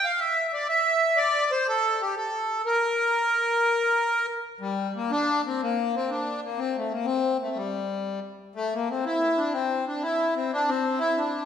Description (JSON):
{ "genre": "celtic folk", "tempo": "122 BPM (dotted quarters)", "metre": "12/8", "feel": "straight", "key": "unclear", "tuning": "A4 = 440 Hz", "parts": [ { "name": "accordion", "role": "solo", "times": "0.0-11.4 s", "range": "G3 to F5", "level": "-23 LUFS", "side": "left 1 dB", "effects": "none" } ], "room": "wet recital hall reverb, RT60 1.8 s", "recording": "recorded in a church or concert hall", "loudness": "-23 LUFS", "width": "side -8 dB against mid", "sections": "0.0-4.6 A section; 4.6-11.5 B section", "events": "none", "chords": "none" }